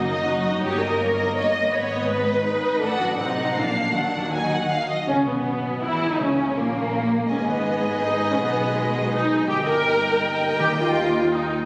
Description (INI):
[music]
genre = classical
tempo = 163 BPM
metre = 3/4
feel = rubato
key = Eb minor, G# minor from 5.1 s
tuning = A4 = 440 Hz
[part]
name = warm symphonic violin section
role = melody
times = 0.0-11.7 s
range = A#3 to Ab5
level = -30 LUFS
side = equal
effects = none
[part]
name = dark symphonic violin section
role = second line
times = 0.0-11.7 s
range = A#3 to Eb5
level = -28 LUFS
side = equal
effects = none
[part]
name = warm symphonic viola section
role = accompaniment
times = 0.0-11.5 s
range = Gb3 to Bb4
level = -27 LUFS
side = equal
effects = none
[part]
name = concert harp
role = arpeggios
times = 0.0-11.7 s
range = Gb2 to Eb5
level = -38 LUFS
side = equal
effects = none
[part]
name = rich symphonic double bass section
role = bass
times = 0.0-11.7 s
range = Gb1 to E2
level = -35 LUFS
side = equal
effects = none
[part]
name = warm symphonic cello section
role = bass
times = 0.0-11.7 s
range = Eb2 to E3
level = -33 LUFS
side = equal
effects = none
[part]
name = mellow French horn section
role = sustained chords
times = 5.1-11.7 s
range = G3 to E4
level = -33 LUFS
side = equal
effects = none
[part]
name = timpani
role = percussion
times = 6.2-6.7, 10.6-11.1 s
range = D#3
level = -37 LUFS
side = equal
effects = none
[sound]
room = wet scoring stage reverb, RT60 1.9 s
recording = recorded on a phone in the room, studio reverb, compression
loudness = -22 LUFS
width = mono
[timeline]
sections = 0.0-5.1 A section; 5.1-11.7 B section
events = none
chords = 0.0 Ebm/Gb; 0.6 Eb7/G; 1.7 Abm; 2.8 Adim7; 3.6 Bb; 3.9 Ebm; 5.1 G#m; 6.2 D#7; 7.3 G#m; 8.4 G#m/B; 9.5 Eb/G; 10.6 Eb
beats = 0.25 | 0.62 0.99 1.35 | 1.71 2.08 2.44 | 2.81 3.18 3.55 | 3.94 4.32 4.71 | 5.09 5.46 5.84 | 6.20 6.57 6.93 | 7.30 7.67 8.03 | 8.39 8.76 9.12 | 9.49 9.86 10.23 | 10.60 10.97 11.34